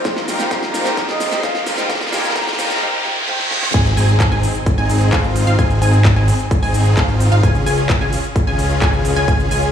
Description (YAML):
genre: EDM, festival progressive house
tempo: 130 BPM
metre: 4/4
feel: straight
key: Ab major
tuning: A4 = 440 Hz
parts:
  - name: breathy flute-like synth lead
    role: melody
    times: 0.0-2.8 s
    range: Eb5 to Bb5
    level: -26 LUFS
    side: equal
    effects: lush chorus, tape echo
  - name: picked steel-string acoustic guitar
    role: accompaniment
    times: 0.0-3.6 s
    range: F3 to G4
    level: -25 LUFS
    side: right 1 dB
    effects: sidechain pumping, tape echo
  - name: dark studio string section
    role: sustained chords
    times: 0.0-2.8 s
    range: C3 to C5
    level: -32 LUFS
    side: left 2 dB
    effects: none
  - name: supersaw chords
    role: riff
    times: 0.0-9.7 s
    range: G3 to Bb4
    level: -22 LUFS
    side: equal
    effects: sidechain pumping, tape echo
  - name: electronic kick drum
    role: drums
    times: 0.0-9.4 s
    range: none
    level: -17 LUFS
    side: equal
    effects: none
  - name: riser, reverse cymbal and impact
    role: sound effects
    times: 0.0-5.6 s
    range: none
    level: -24 LUFS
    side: equal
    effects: none
  - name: big-room dance drum kit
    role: drums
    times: 0.1-9.7 s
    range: crash cymbal, handclaps, hi-hat, shaker, snare drum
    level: -24 LUFS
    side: equal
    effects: none
  - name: wide unison pluck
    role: arpeggios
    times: 3.7-9.7 s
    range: F5 to Ab5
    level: -24 LUFS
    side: right 1 dB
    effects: sidechain pumping, tape echo
  - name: fat analog bass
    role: bass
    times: 3.7-9.7 s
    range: Ab1 to Db2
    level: -16 LUFS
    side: equal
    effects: sidechain pumping
room: moderate lush hall reverb, RT60 2.0 s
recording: played on a big sound system in a bare room, large studio reverb, high-pass filter, small room reverb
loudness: -14 LUFS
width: side -9 dB against mid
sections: 0.0-3.7 A section; 3.7-9.7 B section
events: build-up 0.0-3.7; drum fill 0.0-2.8, 3.4-3.7; riser 0.0-3.7; filter sweep 0.0-3.7; reverse cymbal 2.8-3.7; drop 3.7-9.7; impact 3.7-5.6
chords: 0.0 Fm; 3.7 Ab; 7.4 Db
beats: | 0.05 0.51 0.97 1.43 | 1.90 2.36 2.82 3.28 | 3.74 4.20 4.67 5.13 | 5.59 6.05 6.51 6.97 | 7.43 7.89 8.36 8.82 | 9.28